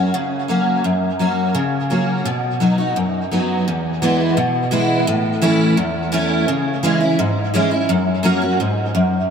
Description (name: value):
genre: country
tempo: 170 BPM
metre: 4/4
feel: straight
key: unclear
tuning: A4 = 440 Hz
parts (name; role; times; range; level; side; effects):
- picked steel-string acoustic guitar; solo; 0.0-9.3 s; E2 to F#4; -16 LUFS; equal; ensemble chorus, diffuse ambient delay
room: wet plate reverb, RT60 2.8 s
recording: dreamy mix soaked in reverb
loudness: -16 LUFS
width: side -7 dB against mid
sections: 0.0-3.7 A section; 3.7-9.3 B section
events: none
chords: 0.0 F#; 2.3 B; 3.7 E; 5.1 A; 6.5 C#m; 7.9 F#